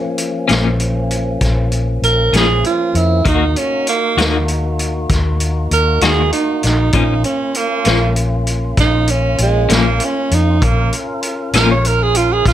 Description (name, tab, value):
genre	slow blues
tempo	65 BPM (dotted quarters)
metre	12/8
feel	straight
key	Bb minor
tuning	A4 = 435 Hz
part	warm tenor saxophone	second line	0.0-12.5 s	Ab3 to Db5	-16 LUFS	right 4 dB	none
part	tonewheel organ	sustained chords	0.0-12.5 s	F3 to Bb4	-23 LUFS	left 2 dB	slow rotary speaker
part	vintage drum kit	drums	0.2-12.5 s	hi-hat, kick drum, snare drum	-19 LUFS	left 1 dB	none
part	clean electric guitar	accompaniment	0.5-11.7 s	Bb2 to Gb4	-17 LUFS	left 6 dB	tremolo
part	vintage muted fingered electric bass	bass	0.5-12.5 s	Bb1 to F2	-16 LUFS	left 1 dB	none
room	light reverb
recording	none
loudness	-13 LUFS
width	side -12 dB against mid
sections	0.0-12.5 A section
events	tenor saxophone solo 0.0-12.5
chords	0.0 Bbm; 3.3 Ebm; 6.9 Bbm